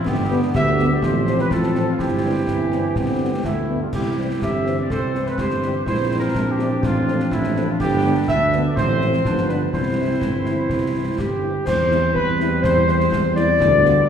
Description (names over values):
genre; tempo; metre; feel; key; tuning
military-style march for wind band; 124 BPM; 2/4; straight; C major; A4 = 440 Hz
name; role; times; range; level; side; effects
dark trumpet section; melody; 0.0-14.1 s; E4 to E5; -24 LUFS; right 1 dB; none
mellow woodwind section; second line; 0.0-14.1 s; B3 to D5; -24 LUFS; left 2 dB; none
warm trombone section; sustained chords; 0.0-14.1 s; D3 to C4; -26 LUFS; right 1 dB; none
mellow tuba; bass; 0.1-14.0 s; G1 to E2; -23 LUFS; right 1 dB; none
concert snare drum, clash cymbals and concert bass drum; drums; 0.1-14.0 s; none; -27 LUFS; left 1 dB; none
dark French horn section; accompaniment; 0.3-13.9 s; D3 to F4; -29 LUFS; left 3 dB; none
warm euphonium; second line; 2.5-3.9 s; E3 to C4; -27 LUFS; right 1 dB; none
room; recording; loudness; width
wet concert hall reverb, RT60 1.9 s; heard from further back in the room; -17 LUFS; side -8 dB against mid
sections
0.0-11.7 A section; 11.7-14.1 B section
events
none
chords
0.1 G; 1.0 F/A; 2.0 C/G; 3.0 G; 3.9 C; 5.9 C7/Bb; 6.8 F/A; 7.8 G; 8.8 F/A; 9.3 G7; 9.7 C; 11.7 C/E